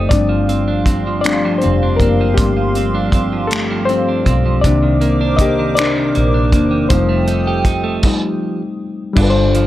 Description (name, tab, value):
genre	slow six-eight R&B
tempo	53 BPM (dotted quarters)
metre	6/8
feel	straight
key	unclear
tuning	A4 = 441 Hz
part	clean electric guitar	second line	0.0-9.7 s	G2 to G4	-20 LUFS	right 5 dB	spring reverb
part	bright reed electric piano	accompaniment	0.0-9.7 s	Eb3 to Eb5	-17 LUFS	left 4 dB	none
part	hollow soft pad	sustained chords	0.0-8.0 s	G4 to Eb6	-24 LUFS	right 1 dB	chorus
part	vintage muted fingered electric bass	bass	0.0-9.7 s	E1 to C2	-18 LUFS	equal	none
part	cloth-damped thuddy drum kit	drums	0.1-9.7 s	crash cymbal, finger snaps, hi-hat, kick drum	-17 LUFS	equal	none
room	small room ambience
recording	none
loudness	-13 LUFS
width	side -14 dB against mid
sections	0.1-9.2 A section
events	reed electric piano solo 0.1-9.2; stop 8.0-9.2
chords	0.1 G7sus4; 4.6 Cm9; 6.9 F9; 9.2 G7sus4